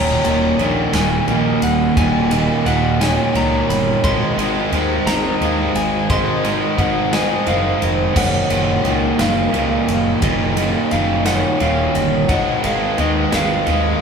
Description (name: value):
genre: post-rock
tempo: 58 BPM (dotted quarters)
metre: 6/8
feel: straight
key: Eb minor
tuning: A4 = 436 Hz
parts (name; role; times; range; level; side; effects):
- electric slide guitar; melody; 0.0-14.0 s; Eb5 to C6; -24 LUFS; left 2 dB; none
- evolving wavetable pad; sustained chords; 0.2-14.0 s; Ab3 to Eb5; -31 LUFS; equal; none
- vibraphone with soft mallets; arpeggios; 0.0-14.0 s; Bb4 to F6; -25 LUFS; right 1 dB; none
- crunchy overdriven guitar; riff; 0.0-14.0 s; Eb2 to Ab3; -20 LUFS; right 5 dB; none
- raw garage guitar; riff; 0.0-14.0 s; Eb2 to Ab3; -22 LUFS; left 7 dB; overdrive
- fuzz picked electric bass; bass; 0.0-13.9 s; Eb1 to Eb2; -23 LUFS; equal; overdrive
- big rock drum kit; drums; 0.2-13.8 s; crash cymbal, kick drum, ride cymbal, snare drum; -24 LUFS; equal; none
room: wet large studio reverb, RT60 1.4 s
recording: band playing live in one room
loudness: -15 LUFS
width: side -6 dB against mid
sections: 0.0-14.0 A section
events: none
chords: 0.0 Ebm7; 4.0 Ab7; 8.2 Ebm7/Gb; 12.3 Abm7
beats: 0.95 | 1.98 3.01 | 4.04 5.07 | 6.10 7.13 | 8.17 9.20 | 10.23 11.26 | 12.30 13.33